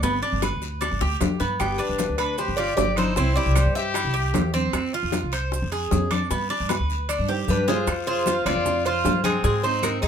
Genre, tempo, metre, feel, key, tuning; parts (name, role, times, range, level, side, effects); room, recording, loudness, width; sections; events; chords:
latin, Cuban son and guajira; 153 BPM; 4/4; straight; A4 = 439 Hz
Cuban tres; arpeggios; 0.0-10.1 s; Ab3 to C5; -27 LUFS; right 3 dB
upright bass; bass; 0.0-10.1 s; G1 to Ab2; -26 LUFS; equal
bongos; percussion; 0.0-10.1 s; -31 LUFS; left 6 dB
congas; percussion; 0.0-10.1 s; -30 LUFS; left 4 dB
guiro; percussion; 0.0-10.1 s; -39 LUFS; left 6 dB
maracas; percussion; 0.0-10.1 s; -38 LUFS; right 6 dB
claves; percussion; 0.4-10.0 s; -40 LUFS; right 3 dB
timbales; percussion; 0.4-10.0 s; -32 LUFS; right 6 dB
Cuban tres; melody; 1.6-4.5, 7.5-10.1 s; G4 to E5; -26 LUFS; right 1 dB
bright trumpet; second line; 1.6-4.5, 7.5-10.1 s; B3 to G4; -29 LUFS; left 6 dB
moderate studio reverb, RT60 0.6 s; minimal, uncompressed stereo recording; -21 LUFS; side -8 dB against mid
0.0-7.9 A section; 7.9-10.1 B section
drum fill 0.8-1.6, 6.7-7.9
0.0 G; 3.2 C; 4.7 Fm; 6.3 G; 7.9 Fmadd9; 9.4 Ab